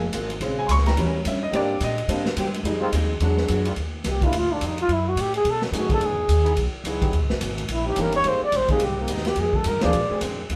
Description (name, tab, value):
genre	jazz, big band swing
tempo	214 BPM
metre	4/4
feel	swing 60% on 8ths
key	Eb major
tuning	A4 = 440 Hz
part	picked old ladder-braced acoustic guitar	accompaniment	0.0-3.7, 8.2-10.6 s	Ab2 to Ab4	-37 LUFS	equal	none
part	upright bass	bass	0.0-10.6 s	Gb1 to B2	-28 LUFS	equal	none
part	swinging big-band drum kit	drums	0.1-10.6 s	hi-hat, kick drum, ride cymbal, snare drum	-31 LUFS	equal	none
part	warm concert grand piano	accompaniment	0.4-9.9 s	Db3 to Db6	-28 LUFS	equal	none
part	warm trombone section	sustained chords	0.9-10.5 s	D3 to Ab4	-33 LUFS	equal	none
part	breathy trumpet	melody	4.1-10.2 s	Bb3 to D5	-26 LUFS	equal	none
room	moderate studio reverb, RT60 0.6 s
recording	band playing live in one room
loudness	-23 LUFS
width	mono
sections	0.0-3.8 A section; 3.8-10.6 A section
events	grand piano solo 0.0-3.8; trumpet solo 3.8-10.6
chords	0.4 Bbm7; 1.0 Eb7b9; 1.5 Abmaj9#11; 2.6 Fm7; 3.2 E9; 3.8 Ebmaj9; 4.9 Gbm; 5.5 B13; 6.0 Emaj7; 7.1 Eb7b9; 8.3 Abmaj7; 9.4 Fm9; 9.9 Bb9